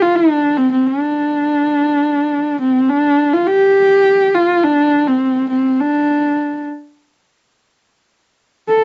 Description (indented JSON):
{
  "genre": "mongolian traditional, Mongolian folk",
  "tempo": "free time",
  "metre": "none",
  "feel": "none",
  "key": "D yu mode",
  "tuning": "A4 = 440 Hz",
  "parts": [
    { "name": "dark horsehead fiddle", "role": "solo", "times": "0.0-8.8 s", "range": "C4 to A4", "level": "-15 LUFS", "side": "equal", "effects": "cassette tape" }
  ],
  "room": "light reverb",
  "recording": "home recording on cassette, nothing above 7.8 kHz",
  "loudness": "-15 LUFS",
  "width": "mono",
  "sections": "0.0-3.5 A section; 3.5-8.8 A section",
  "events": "none",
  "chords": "none"
}